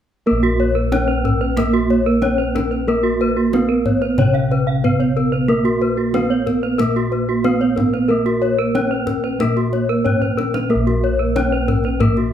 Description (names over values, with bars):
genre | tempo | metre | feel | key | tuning
Balinese gamelan | 92 BPM | 4/4 | straight | unclear | A4 = 440 Hz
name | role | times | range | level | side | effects
gamelan-type bronze metallophone | melody | 0.3-12.3 s | Bb3 to Db4-30c | -20 LUFS | equal | none
gamelan-type bronze metallophone | accompaniment | 0.3-12.3 s | Db3-30c to Bb3 | -24 LUFS | right 3 dB | none
gamelan-type bronze metallophone | arpeggios | 0.3-12.2 s | Bb4 to Db5-30c | -23 LUFS | left 7 dB | none
gamelan-type bossed gongs | bass | 0.3-12.3 s | Bb1 to Bb4 | -22 LUFS | equal | none
gamelan-type bronze metallophone | arpeggios | 0.4-12.3 s | Gb4-20c to F5-30c | -24 LUFS | right 5 dB | none
kendang | percussion | 0.4-12.3 s | none | -23 LUFS | left 1 dB | none
room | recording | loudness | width
moderate large studio reverb, RT60 0.8 s | band playing live in one room | -15 LUFS | side -10 dB against mid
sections
0.3-12.3 A section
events
drum fill 10.2-10.7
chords
none